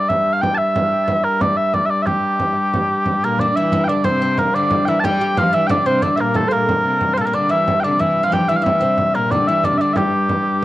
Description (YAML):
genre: medieval dance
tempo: 122 BPM (dotted quarters)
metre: 6/8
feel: straight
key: G dorian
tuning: A4 = 439 Hz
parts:
  - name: mellow small bagpipes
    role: melody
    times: 0.0-10.6 s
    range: G4 to A5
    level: -17 LUFS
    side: equal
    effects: cassette tape, plate reverb, tape echo
  - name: warm hurdy-gurdy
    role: drone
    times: 0.0-10.6 s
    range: G2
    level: -24 LUFS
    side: left 2 dB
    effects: stereo widening, plate reverb
  - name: frame drum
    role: percussion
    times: 0.1-10.6 s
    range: none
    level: -24 LUFS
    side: right 1 dB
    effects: none
  - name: clear viola da gamba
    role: second line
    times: 3.2-10.6 s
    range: G2 to G3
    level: -24 LUFS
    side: left 2 dB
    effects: plate reverb
  - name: oud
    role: second line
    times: 3.2-10.6 s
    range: G3 to G4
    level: -25 LUFS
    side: right 2 dB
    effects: plate reverb
room: wet booth ambience, RT60 0.2 s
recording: home recording on cassette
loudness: -15 LUFS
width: side -15 dB against mid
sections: 0.0-3.1 A section; 3.1-10.6 A section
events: none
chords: none